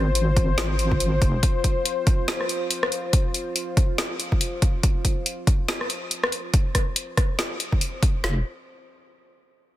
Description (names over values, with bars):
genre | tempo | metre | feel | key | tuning
deep dubstep | 141 BPM | 4/4 | swing 59% on 16ths, half-time | F minor | A4 = 441 Hz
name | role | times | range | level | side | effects
dark analog pad | sustained chords | 0.0-8.3 s | F4 to C5 | -30 LUFS | left 2 dB | chorus
deep soft wobble bass | bass | 0.0-1.4, 8.2-8.4 s | F1 to Ab1 | -22 LUFS | equal | chorus
deep house drum kit | drums | 0.2-8.1 s | hi-hat, rim click, snare drum | -26 LUFS | left 1 dB | none
deep house drum kit | drums | 0.4-8.4 s | kick drum, snare drum | -21 LUFS | equal | none
room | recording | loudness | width
little or no reverb | dense, heavily limited modern master | -21 LUFS | side -14 dB against mid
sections
0.0-8.2 A section; 8.2-9.8 B section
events
none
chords
0.0 Fm; 1.4 F5; 8.2 N.C.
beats
0.15 0.58 1.00 | 1.43 1.85 2.28 2.71 | 3.13 3.56 3.98 4.41 | 4.83 5.26 5.68 6.11 | 6.54 6.96 7.39 7.81 | 8.24